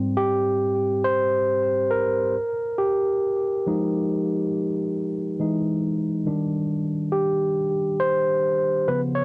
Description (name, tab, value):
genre	R&B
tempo	69 BPM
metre	4/4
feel	swing 64% on 16ths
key	Eb major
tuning	A4 = 440 Hz
part	barky tine electric piano	solo	0.0-9.2 s	Ab2 to Db5	-20 LUFS	equal	overdrive, cassette tape
room	moderate booth ambience, RT60 0.3 s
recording	home recording on cassette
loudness	-20 LUFS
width	side -25 dB against mid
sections	0.0-9.2 A section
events	tine electric piano solo 0.0-9.2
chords	0.0 Abmaj7; 2.3 Fm9; 5.4 Emaj7; 6.3 Ebmaj7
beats	0.17 1.04 1.91 | 2.78 3.65 4.52 5.39 | 6.26 7.13 8.00 8.87